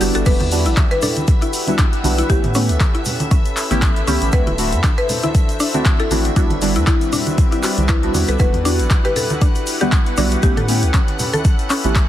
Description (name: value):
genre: deep house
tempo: 118 BPM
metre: 4/4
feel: swing 56% on 16ths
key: E minor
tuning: A4 = 440 Hz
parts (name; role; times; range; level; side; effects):
- warm analog pad; sustained chords; 0.0-12.1 s; C#4 to C5; -29 LUFS; left 2 dB; chorus, sidechain pumping
- mallet-like synth pluck; arpeggios; 0.0-11.7 s; C#4 to B4; -25 LUFS; left 2 dB; chorus, sidechain pumping, ping-pong delay
- deep mellow chord stab; stabs; 0.0-12.0 s; G3 to G4; -22 LUFS; right 1 dB; chorus, phaser, sidechain pumping, dub echo
- round analog bass; bass; 0.0-12.1 s; D1 to A2; -20 LUFS; equal; sidechain pumping
- punchy analog drum machine; drums; 0.0-12.1 s; crash cymbal, handclaps, hi-hat; -24 LUFS; left 1 dB; none
- egg shaker; percussion; 0.0-12.1 s; none; -31 LUFS; right 3 dB; none
- string machine, violins; texture; 0.0-12.1 s; E5 to F#5; -32 LUFS; equal; ensemble chorus
- warbly tape-like pad; texture; 0.0-12.1 s; G3 to B5; -28 LUFS; equal; chorus, built-in reverb, sidechain pumping
- buzzing marimba with medium hard mallets; melody; 0.1-10.9 s; E4 to B4; -25 LUFS; left 2 dB; ping-pong delay
- electronic kick drum; drums; 0.3-12.1 s; none; -15 LUFS; equal; none
- congas; percussion; 0.4-11.9 s; none; -27 LUFS; right 1 dB; none
room: little or no reverb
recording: dense, heavily limited modern master, vinyl crackle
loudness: -14 LUFS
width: side -12 dB against mid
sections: 0.0-12.1 A section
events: none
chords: 0.3 Em9; 2.3 A9; 4.3 D9; 6.4 Cmaj9#11; 8.4 Em9; 10.4 A9